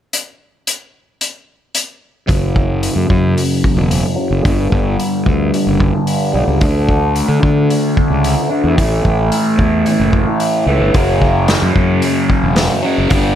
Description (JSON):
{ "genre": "psychedelic rock", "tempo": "111 BPM", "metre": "4/4", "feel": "straight", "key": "unclear", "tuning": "A4 = 436 Hz", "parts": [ { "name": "vintage drum kit", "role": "drums", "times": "0.1-13.2 s", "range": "hi-hat, kick drum, snare drum", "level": "-17 LUFS", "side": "equal", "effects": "none" }, { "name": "fuzz guitar", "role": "riff", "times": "2.3-13.4 s", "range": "F#2 to D4", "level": "-15 LUFS", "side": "equal", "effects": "distortion, phaser, low-pass filter" }, { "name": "fuzz fingered electric bass", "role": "bass", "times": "2.3-13.3 s", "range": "E1 to D3", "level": "-16 LUFS", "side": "equal", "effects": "overdrive" } ], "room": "small room ambience", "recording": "none", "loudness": "-12 LUFS", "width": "side -10 dB against mid", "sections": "0.1-2.3 A section; 2.3-13.4 B section", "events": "filter sweep on distorted electric guitar 2.3-13.4", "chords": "0.1 N.C.; 2.3 F#5; 4.5 G5; 6.6 D5; 8.8 A5; 11.0 F#5" }